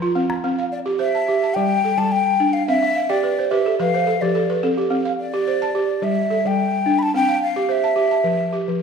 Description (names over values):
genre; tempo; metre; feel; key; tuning
west african traditional; 107 BPM; 4/4; straight; C major; A4 = 440 Hz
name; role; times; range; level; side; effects
balafon; arpeggios; 0.0-8.8 s; F3 to A5; -20 LUFS; right 2 dB; none
breathy mellow jazz flute; melody; 0.7-8.5 s; D5 to B5; -20 LUFS; left 2 dB; none
room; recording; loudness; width
wet recital hall reverb, RT60 1.5 s; minimal, uncompressed stereo recording; -17 LUFS; side -6 dB against mid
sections
0.4-8.8 A section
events
balafon fill 2.7-4.9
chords
0.4 C; 1.6 G5; 2.7 C5; 3.8 F5; 4.9 C5; 6.0 G5; 7.2 C; 8.3 F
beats
| 0.45 1.00 1.56 2.12 | 2.68 3.24 3.80 4.36 | 4.92 5.47 6.03 6.59 | 7.15 7.71 8.27 8.82